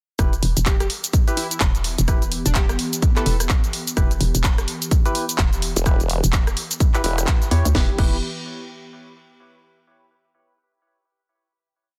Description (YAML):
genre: bass house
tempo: 127 BPM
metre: 4/4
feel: swing 60% on 16ths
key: E minor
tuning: A4 = 440 Hz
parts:
  - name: sweeping resonant pad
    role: sustained chords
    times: 0.2-8.0 s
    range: E3 to G4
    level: -36 LUFS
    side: equal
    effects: lush chorus, sidechain pumping
  - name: percussive organ stab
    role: stabs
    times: 0.2-8.2 s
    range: E4 to C#5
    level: -33 LUFS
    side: equal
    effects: chorus, sidechain pumping, tape echo
  - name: hollow knocking FM bass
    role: bass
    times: 0.2-8.2 s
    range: E1 to E2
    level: -24 LUFS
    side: equal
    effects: tube saturation, sidechain pumping
  - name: electronic kick drum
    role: drums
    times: 0.2-8.1 s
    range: none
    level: -21 LUFS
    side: equal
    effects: none
  - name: garage drum kit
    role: drums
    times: 0.2-8.1 s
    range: cabasa, crash cymbal, handclaps, hi-hat, rim click, snare drum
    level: -28 LUFS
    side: equal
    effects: soft clipping on snare
  - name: plucky unison lead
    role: melody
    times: 0.7-3.4 s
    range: D4 to A4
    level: -34 LUFS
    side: equal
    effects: cassette tape, tape echo
  - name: formant-sweep wobble bass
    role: bass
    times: 5.8-7.3 s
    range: E1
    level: -24 LUFS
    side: equal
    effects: chorus, sidechain pumping
room: little or no reverb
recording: dense, heavily limited modern master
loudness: -20 LUFS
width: mono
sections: 0.2-7.7 drop; 7.7-9.6 final chord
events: drop 0.2-7.7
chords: 0.2 Em